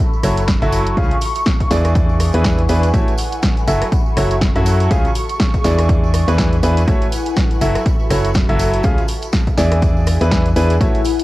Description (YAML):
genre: piano house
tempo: 122 BPM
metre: 4/4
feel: swing 57% on 16ths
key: unclear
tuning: A4 = 440 Hz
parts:
  - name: ethereal airy pad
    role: texture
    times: 0.0-11.2 s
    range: E4 to C#6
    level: -24 LUFS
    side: left 2 dB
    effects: ensemble chorus, built-in reverb, phaser, sidechain pumping, cassette tape
  - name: tambourine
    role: percussion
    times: 0.1-11.2 s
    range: none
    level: -36 LUFS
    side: right 9 dB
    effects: none
  - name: bright upright piano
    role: riff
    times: 0.2-11.0 s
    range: C#3 to E#5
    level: -20 LUFS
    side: equal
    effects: sidechain pumping, cassette tape, tape echo
  - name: solid FM bass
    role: bass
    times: 0.2-11.0 s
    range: F#1 to F#2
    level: -17 LUFS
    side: equal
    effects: sidechain pumping
  - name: punchy analog drum machine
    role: drums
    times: 0.2-11.2 s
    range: hi-hat, rim click, snare drum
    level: -23 LUFS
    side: equal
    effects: overdrive, studio reverb
  - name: electronic kick drum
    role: drums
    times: 0.5-10.9 s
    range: none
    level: -17 LUFS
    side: equal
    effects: studio reverb
room: light reverb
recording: home recording on cassette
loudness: -13 LUFS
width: side -17 dB against mid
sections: 0.0-11.2 A section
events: none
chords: 0.0 F#m7; 1.0 C#; 1.7 E7; 2.9 A6; 3.7 F#m7; 4.9 C#; 5.6 E7; 6.9 A6; 7.6 F#m7; 8.8 C#; 9.6 E7